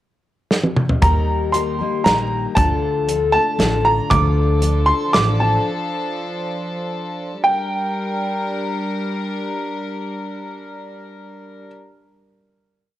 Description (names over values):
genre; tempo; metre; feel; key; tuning
indie folk with a building arrangement; 94-117 BPM; 3/4; straight; G minor; A4 = 438 Hz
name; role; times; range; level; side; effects
natural country drum kit; drums; 0.5-5.3 s; hi-hat, kick drum, snare drum, toms; -19 LUFS; right 1 dB; none
clear upright piano; melody; 1.0-11.7 s; G5 to D6; -20 LUFS; right 1 dB; cassette tape
fingerpicked steel-string acoustic guitar; accompaniment; 1.0-5.7 s; D3 to Bb4; -28 LUFS; left 8 dB; cassette tape
picked steel-string acoustic guitar; accompaniment; 1.0-5.7 s; D3 to Bb4; -24 LUFS; left 7 dB; cassette tape
upright bass; bass; 1.0-5.6 s; A1 to Eb2; -19 LUFS; right 1 dB; none
warm chamber string section; sustained chords; 4.1-11.7 s; F3 to Bb4; -25 LUFS; left 1 dB; cassette tape
room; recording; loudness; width
light reverb, small room ambience; home recording on cassette; -17 LUFS; side -13 dB against mid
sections
0.0-1.0 pickup bar; 1.0-7.5 pre-chorus; 7.5-11.3 final chord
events
drum fill 0.5-1.0; slowing down 4.1-7.5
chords
0.0 N.C.; 1.0 Eb; 2.6 Dm; 7.5 Gm